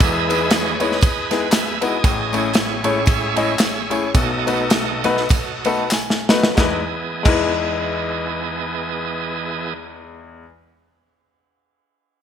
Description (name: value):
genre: uptempo gospel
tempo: 88-118 BPM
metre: 4/4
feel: swing 57% on 8ths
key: E major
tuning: A4 = 441 Hz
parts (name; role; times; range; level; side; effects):
- bright concert grand piano; accompaniment; 0.0-10.4 s; A1 to B5; -22 LUFS; left 4 dB; none
- bright tonewheel organ; sustained chords; 0.0-9.7 s; A2 to E5; -23 LUFS; right 3 dB; fast rotary speaker, overdrive
- modern studio drum kit; drums; 0.0-7.5 s; crash cymbal, kick drum, ride cymbal, snare drum; -19 LUFS; equal; gated reverb
- tambourine and handclaps; percussion; 0.0-7.5 s; none; -29 LUFS; left 3 dB; none
room: moderate lush hall reverb, RT60 1.6 s, studio reverb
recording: bright 1980s-style digital production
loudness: -17 LUFS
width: side -8 dB against mid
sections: 0.0-6.6 A section; 6.6-12.0 B section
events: tonewheel organ solo 0.0-6.6; slowing down 2.0-6.6; grand piano fill 5.3-6.6; drum fill 5.9-6.6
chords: 0.0 Emaj7; 2.0 Amaj7; 4.1 B7; 6.6 Emaj7